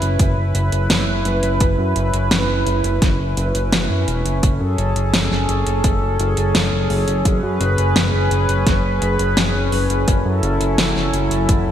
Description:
synthwave; 85 BPM; 4/4; straight; A4 = 441 Hz
chorused pulse-width pad; sustained chords; 0.0-11.7 s; F#3 to B4; -21 LUFS; equal; sidechain pumping
fat analog bass; bass; 0.0-11.7 s; E1 to F#2; -19 LUFS; equal
pop drum kit; drums; 0.0-11.6 s; hi-hat, snare drum; -22 LUFS; equal; overdrive
electronic kick drum; drums; 0.2-11.6 s; -18 LUFS; equal; overdrive
moderate lush hall reverb, RT60 2.7 s; bright 1980s-style digital production; -15 LUFS; side -10 dB against mid
0.0-11.7 A section
0.0 C#m7/F#; 4.4 Amaj7/F#; 10.1 F#m7

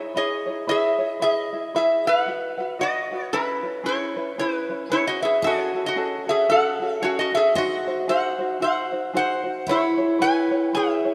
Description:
Hawaiian; 114 BPM; 4/4; swing 59% on 8ths; E major; A4 = 441 Hz
metal-body resonator slide guitar; melody; 0.0-11.1 s; E4 to G#5; -24 LUFS; equal
tenor ukulele; accompaniment; 0.0-11.1 s; C#4 to F#5; -31 LUFS; equal
picked steel-string acoustic guitar; second line; 5.4-11.1 s; E4 to G#4; -30 LUFS; equal
wet lush hall reverb, RT60 3.0 s; rough home demo mix, cassette tape; -23 LUFS; mono
0.0-11.1 A section
0.0 E6; 1.2 E; 2.3 B; 3.3 C#m7; 5.4 F#madd9; 7.5 G#7; 9.7 C#m7

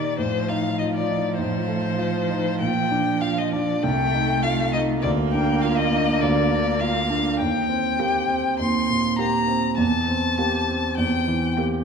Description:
quick classical-period movement for piano trio; 100 BPM; 4/4; rubato; Bb major; A4 = 440 Hz
rich violin; melody; 0.0-11.6 s; C5 to C6; -24 LUFS; left 5 dB
rich cello; second line; 0.0-11.8 s; Eb3 to Bb3; -28 LUFS; right 5 dB
warm concert grand piano; accompaniment; 0.0-11.8 s; C2 to G4; -22 LUFS; right 1 dB
wet scoring stage reverb, RT60 1.6 s; minimal, uncompressed stereo recording; -20 LUFS; side -6 dB against mid
0.0-11.8 A section
0.2 F7/A; 2.6 Bb; 3.8 F7/C; 5.0 Bb/D; 7.4 Cm7/Eb; 9.8 C7/E

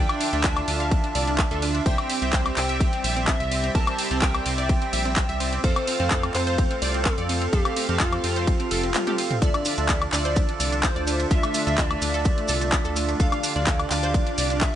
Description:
progressive house; 127 BPM; 4/4; straight; D minor; A4 = 439 Hz
plucky unison lead; melody; 0.0-14.8 s; F4 to A5; -30 LUFS; left 1 dB; sidechain pumping, digital delay
filtered supersaw swell; sustained chords; 0.0-14.8 s; D3 to D5; -34 LUFS; equal; sidechain pumping
wide unison pluck; arpeggios; 0.0-14.7 s; A3 to F5; -31 LUFS; equal; sidechain pumping, digital delay
chorused polysynth; stabs; 0.0-14.8 s; C4 to F5; -30 LUFS; right 4 dB; sidechain pumping, digital delay
round analog bass; bass; 0.0-14.7 s; F1 to F2; -28 LUFS; equal; sidechain pumping
pop drum kit; drums; 0.1-14.7 s; handclaps, hi-hat, ride cymbal, toms, woodblock; -27 LUFS; equal
electronic kick drum; drums; 0.4-14.7 s; -24 LUFS; equal
maracas; percussion; 9.4-14.7 s; -33 LUFS; right 2 dB
little or no reverb; nothing above 10.7 kHz; -20 LUFS; side -11 dB against mid
0.0-14.8 A section
drum fill 8.9-9.4
0.0 Dmadd9; 1.9 C; 5.6 F; 9.4 Dmadd9

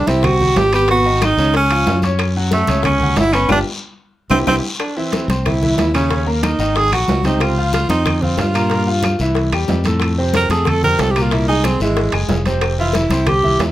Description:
Afro-Cuban jazz; 184 BPM; 4/4; straight; A4 = 439 Hz
warm tenor saxophone; melody; 0.0-13.6 s; G#3 to Bb4; -17 LUFS; right 2 dB
clear concert grand piano; accompaniment; 0.0-13.7 s; A2 to C#6; -21 LUFS; equal
modern bright fingered electric bass; bass; 0.1-13.7 s; F1 to G2; -19 LUFS; equal
bongos; percussion; 0.1-13.7 s; -28 LUFS; left 7 dB
congas; percussion; 0.1-13.7 s; -24 LUFS; equal
guiro; percussion; 0.1-13.7 s; -30 LUFS; left 3 dB
timbales; percussion; 0.1-13.7 s; -24 LUFS; right 4 dB
claves; percussion; 0.2-13.4 s; -27 LUFS; left 6 dB
moderate club reverb, RT60 0.5 s; -14 LUFS; side -14 dB against mid
0.0-4.8 A section; 4.8-13.7 B section
drum fill 3.5-4.8; band accent 3.5-4.8; tenor saxophone solo 4.8-13.7
0.0 C5; 0.9 G#m7; 1.5 C#; 2.2 F#m; 3.5 G5; 4.1 C; 6.1 Eb5; 6.8 Ab7; 7.4 Dbmaj9; 8.7 Gm7; 9.4 C6; 10.0 F; 11.3 Caug7; 12.6 Fsus2

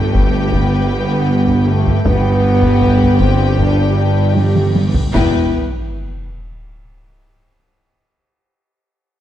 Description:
cinematic, epic orchestral film score; 77 BPM; 4/4; straight; E minor; A4 = 439 Hz
clear symphonic violin section; melody; 0.0-5.6 s; G5; -27 LUFS; left 5 dB
rich symphonic violin section; second line; 0.0-5.6 s; B4; -29 LUFS; left 3 dB
rich symphonic viola section; accompaniment; 0.0-5.6 s; B3 to G4; -27 LUFS; left 2 dB
mellow French horn section; sustained chords; 0.0-5.5 s; A3 to G4; -18 LUFS; left 2 dB
clear symphonic double bass section; bass; 0.0-5.6 s; E1 to G1; -20 LUFS; right 2 dB
mellow tuba; bass; 0.0-5.5 s; E1 to G1; -21 LUFS; right 2 dB
rich symphonic cello section; bass; 0.0-5.6 s; E2 to G2; -18 LUFS; right 2 dB
taiko ensemble; drums; 0.1-6.7 s; -18 LUFS; equal
cymbal swell and sub drop; sound effects; 4.2-8.3 s; -28 LUFS; equal
moderate scoring stage reverb, RT60 1.5 s; dark, warm production; -12 LUFS; side -12 dB against mid
0.0-5.1 A section; 5.1-8.3 B section
cymbal swell 4.2-5.1; drum fill 4.4-5.1; impact 5.1-8.3
0.0 G; 5.1 E5

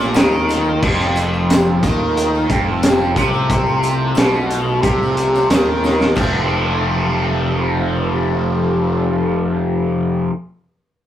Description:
psychedelic rock; 90 BPM; 4/4; straight; F mixolydian; A4 = 441 Hz
overdriven combo organ; sustained chords; 0.0-9.6 s; F3 to C5; -27 LUFS; right 3 dB
overdriven electric guitar; riff; 0.0-10.3 s; F2 to C4; -17 LUFS; left 1 dB; phaser
fuzz picked electric bass; bass; 0.0-10.3 s; F1 to Eb2; -22 LUFS; equal; overdrive
crunchy breakbeat drum kit; drums; 0.0-6.3 s; crash cymbal, hi-hat, kick drum, snare drum; -18 LUFS; equal
tambourine; percussion; 0.1-6.5 s; -40 LUFS; left 6 dB
light reverb; rough rehearsal-room recording; -14 LUFS; side -11 dB against mid
0.0-6.2 A section; 6.2-8.8 B section
drum fill 5.8-6.2
0.0 F

